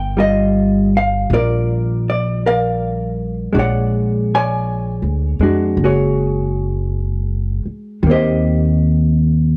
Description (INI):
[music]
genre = jazz ballad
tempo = 53 BPM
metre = 4/4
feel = swing 67% on 8ths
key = unclear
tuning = A4 = 442 Hz
[part]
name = hollow-body jazz guitar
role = accompaniment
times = 0.0-9.6 s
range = Eb3 to Ab5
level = -19 LUFS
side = equal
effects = none
[part]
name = upright bass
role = bass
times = 0.0-9.6 s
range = F#1 to F2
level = -21 LUFS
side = equal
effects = none
[sound]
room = light reverb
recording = worn, warbling old tape, cassette tape, warbly pitch drift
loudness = -17 LUFS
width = mono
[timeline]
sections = 0.0-9.6 A section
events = none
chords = 0.0 Gm7; 3.5 Bb7alt; 8.0 Eb6